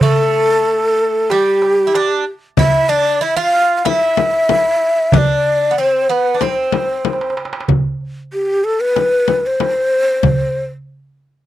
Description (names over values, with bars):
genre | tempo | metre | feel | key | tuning
Turkish makam ensemble | 94 BPM | 4/4 | straight | C makam rast | A4 = 440 Hz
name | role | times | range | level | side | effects
breathy mellow ney | melody | 0.0-10.6 s | G4 to F5 | -14 LUFS | left 1 dB | none
Greek bouzouki | second line | 0.0-7.3 s | G3 to F4 | -21 LUFS | right 7 dB | none
darbuka | percussion | 0.0-10.6 s | none | -18 LUFS | right 3 dB | none
frame drum | percussion | 2.6-10.4 s | none | -19 LUFS | left 8 dB | none
room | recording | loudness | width
little or no reverb | dry, close 1970s-style studio recording | -13 LUFS | side -13 dB against mid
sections
0.0-7.7 A section; 7.7-11.5 B section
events
drum fill 7.0-7.7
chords
none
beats
| 0.01 0.65 1.29 1.93 | 2.57 3.21 3.85 4.49 | 5.13 5.77 6.41 7.05 | 7.69 8.33 8.97 9.61 | 10.25